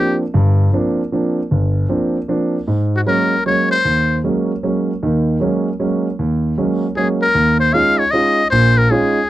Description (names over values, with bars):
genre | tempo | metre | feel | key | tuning
jazz | 154 BPM | 3/4 | swing 66% on 8ths | unclear | A4 = 440 Hz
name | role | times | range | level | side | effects
trumpet with metal mute | melody | 0.0-0.2, 3.0-4.2, 7.0-9.3 s | Gb4 to F5 | -15 LUFS | left 2 dB | none
warm concert grand piano | accompaniment | 0.0-9.2 s | G1 to F4 | -15 LUFS | right 1 dB | none
room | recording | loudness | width
light reverb | dry, close 1970s-style studio recording | -14 LUFS | side -14 dB against mid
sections
0.0-7.3 A section; 7.3-9.3 B section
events
none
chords
0.0 C9sus4; 2.7 Ab9sus4; 7.3 Eb9sus4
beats
| 0.33 0.72 1.11 | 1.50 1.89 2.28 | 2.67 3.06 3.45 | 3.84 4.23 4.62 | 5.01 5.40 5.79 | 6.18 6.57 6.96 | 7.35 7.74 8.13 | 8.52 8.91 9.29